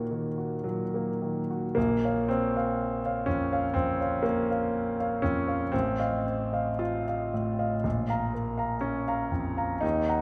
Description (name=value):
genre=classical, romantic character piece for solo piano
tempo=53-63 BPM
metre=4/4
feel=rubato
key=Bb minor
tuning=A4 = 440 Hz
part: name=clear grand piano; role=solo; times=0.0-10.2 s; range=A1 to Bb5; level=-29 LUFS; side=equal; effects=none
room=wet concert hall reverb, RT60 2.5 s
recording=none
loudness=-29 LUFS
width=mono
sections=0.0-1.8 A section; 1.8-10.2 B section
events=none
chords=0.0 Ebm; 1.8 Bbm; 5.7 F7/A; 7.8 Bbm